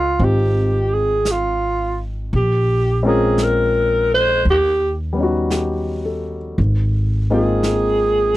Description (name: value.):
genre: jazz ballad.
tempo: 56 BPM.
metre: 4/4.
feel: swing 68% on 8ths.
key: Ab major.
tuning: A4 = 440 Hz.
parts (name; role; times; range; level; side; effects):
growling alto saxophone; melody; 0.0-8.4 s; F4 to C5; -17 LUFS; right 1 dB; none.
warm grand piano; accompaniment; 0.0-8.4 s; G3 to G5; -21 LUFS; left 2 dB; none.
upright bass; bass; 0.0-8.4 s; Ab1 to Eb2; -20 LUFS; equal; none.
vintage brush drum kit; drums; 0.2-8.4 s; brushed snare drum, hi-hat, snare drum; -28 LUFS; right 1 dB; none.
room: little or no reverb.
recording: dry, close 1970s-style studio recording.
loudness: -16 LUFS.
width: side -16 dB against mid.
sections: 0.0-8.4 A section.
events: alto saxophone solo 0.0-8.4.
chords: 0.0 Dbmaj9#11 (rootless); 2.3 Bbm7; 4.4 Eb7alt; 6.6 Ab69.